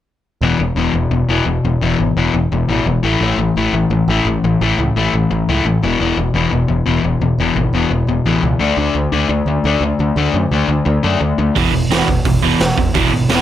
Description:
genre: punk rock.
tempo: 172 BPM.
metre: 4/4.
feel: straight.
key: unclear.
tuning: A4 = 440 Hz.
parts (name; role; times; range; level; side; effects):
overdriven semi-hollow guitar; riff; 0.4-13.4 s; E2 to D4; -15 LUFS; left 4 dB; none.
overdriven picked electric bass; bass; 0.4-13.4 s; E1 to F#2; -19 LUFS; right 2 dB; none.
overdriven electric guitar; riff; 11.6-13.4 s; E2 to E3; -18 LUFS; right 13 dB; none.
raw garage drum kit; drums; 11.6-13.4 s; hi-hat, kick drum, snare drum; -16 LUFS; right 2 dB; none.
room: little or no reverb.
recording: none.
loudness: -13 LUFS.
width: side -11 dB against mid.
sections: 0.4-13.4 A section.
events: none.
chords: 0.4 E5; 3.0 A5; 5.8 E5; 8.6 D5; 11.6 E5.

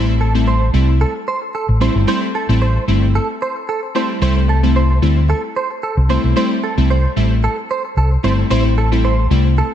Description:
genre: afrobeats.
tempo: 112 BPM.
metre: 4/4.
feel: swing 55% on 16ths.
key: unclear.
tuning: A4 = 440 Hz.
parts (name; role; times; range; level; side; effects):
glassy digital keys; accompaniment; 0.0-9.5 s; G3 to E4; -19 LUFS; left 1 dB; chorus.
direct-recorded clean electric guitar; riff; 0.0-9.7 s; A4 to C5; -22 LUFS; right 4 dB; ensemble chorus, ping-pong delay.
fingered electric bass; bass; 0.0-9.6 s; G1 to D2; -14 LUFS; equal; none.
room: light reverb, digital ambience.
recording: none.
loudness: -14 LUFS.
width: side -10 dB against mid.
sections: 0.0-9.7 A section.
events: none.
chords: 0.0 Am7; 4.2 C6; 8.5 Am7.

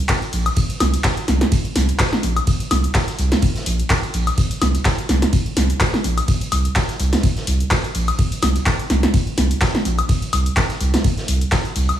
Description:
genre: acid house.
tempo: 126 BPM.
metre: 4/4.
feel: swing 55% on 16ths.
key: unclear.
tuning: A4 = 440 Hz.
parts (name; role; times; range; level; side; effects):
electronic kick drum; drums; 0.1-11.6 s; none; -20 LUFS; equal; none.
punchy analog drum machine; drums; 0.1-12.0 s; handclaps, hi-hat, ride cymbal, snare drum, woodblock; -20 LUFS; equal; overdrive.
raw garage drum kit; drums; 0.1-11.9 s; hi-hat, snare drum; -31 LUFS; right 2 dB; high-pass filter on hats, high-pass filter on snare, high-pass filter on room.
saturated sub bass; bass; 0.3-11.9 s; Bb1 to C2; -18 LUFS; right 1 dB; sidechain pumping.
room: light reverb, digital ambience.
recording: studio reverb.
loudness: -16 LUFS.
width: side -11 dB against mid.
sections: 0.0-12.0 A section.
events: none.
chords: none.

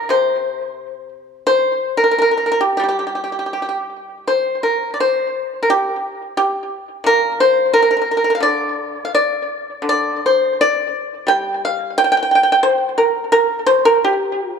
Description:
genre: chinese traditional, Chinese solo plucked strings.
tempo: 80-90 BPM.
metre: 2/4.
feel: rubato.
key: G yu mode.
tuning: A4 = 440 Hz.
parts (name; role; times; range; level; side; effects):
pipa; solo; 0.0-14.6 s; Bb2 to G5; -15 LUFS; equal; tape echo.
room: moderate recital hall reverb, RT60 1.6 s.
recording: dark, warm production.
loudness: -15 LUFS.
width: side -6 dB against mid.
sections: 0.0-4.3 A section; 4.3-14.6 B section.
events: none.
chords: none.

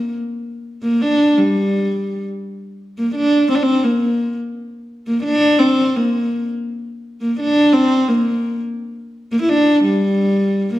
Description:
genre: medieval.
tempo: 170 BPM.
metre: 3/4.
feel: straight.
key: G minor.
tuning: A4 = 442 Hz.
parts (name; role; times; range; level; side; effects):
warm viola da gamba; solo; 0.0-10.8 s; G3 to E4; -15 LUFS; equal; none.
room: wet recital hall reverb, RT60 1.3 s.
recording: dark, warm production.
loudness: -15 LUFS.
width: side -15 dB against mid.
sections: 0.0-2.4 A section; 2.4-10.8 A section.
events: none.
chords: none.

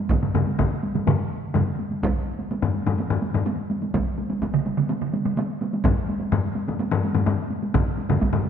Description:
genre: japanese traditional, taiko drum ensemble.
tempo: 126 BPM.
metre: 4/4.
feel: straight.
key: none.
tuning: none.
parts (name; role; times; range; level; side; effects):
taiko ensemble; percussion; 0.1-8.5 s; none; -26 LUFS; right 2 dB; none.
taiko ensemble; percussion; 0.1-8.4 s; none; -24 LUFS; left 5 dB; none.
taiko ensemble; percussion; 0.1-8.4 s; none; -26 LUFS; right 6 dB; none.
taiko ensemble; percussion; 0.1-8.3 s; none; -26 LUFS; right 2 dB; none.
room: wet concert hall reverb, RT60 1.8 s.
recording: none.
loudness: -22 LUFS.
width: side -8 dB against mid.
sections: 0.0-8.5 A section.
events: none.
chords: none.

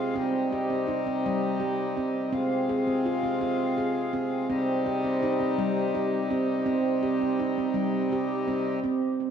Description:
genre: world meditative, meditative tuned percussion.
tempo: 55 BPM (dotted quarters).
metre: 6/8.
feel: straight.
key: C minor.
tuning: A4 = 440 Hz.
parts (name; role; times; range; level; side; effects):
hand-pumped harmonium; sustained chords; 0.0-8.8 s; C3 to F4; -29 LUFS; left 2 dB; none.
handpan; arpeggios; 0.0-9.1 s; G3 to Ab4; -26 LUFS; right 2 dB; tape echo.
room: wet echo chamber reverb, RT60 2.1 s.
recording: echo-heavy mix.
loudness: -24 LUFS.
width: side -8 dB against mid.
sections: 0.0-8.8 A section.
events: none.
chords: 0.2 Cm; 2.3 Fm/C; 4.5 Cm.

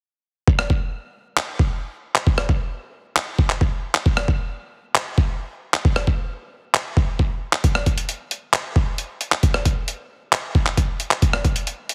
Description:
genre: hip hop.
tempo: 134 BPM.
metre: 4/4.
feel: half-time.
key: none.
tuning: none.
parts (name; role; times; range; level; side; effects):
breakbeat sampler-style drum kit; drums; 0.5-11.9 s; handclaps, hi-hat, kick drum, rim click; -20 LUFS; equal; none.
room: light reverb.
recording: heavily compressed radio sound.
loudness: -21 LUFS.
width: mono.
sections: 0.5-11.9 A section.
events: hi-hats muted 0.5-7.6.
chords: none.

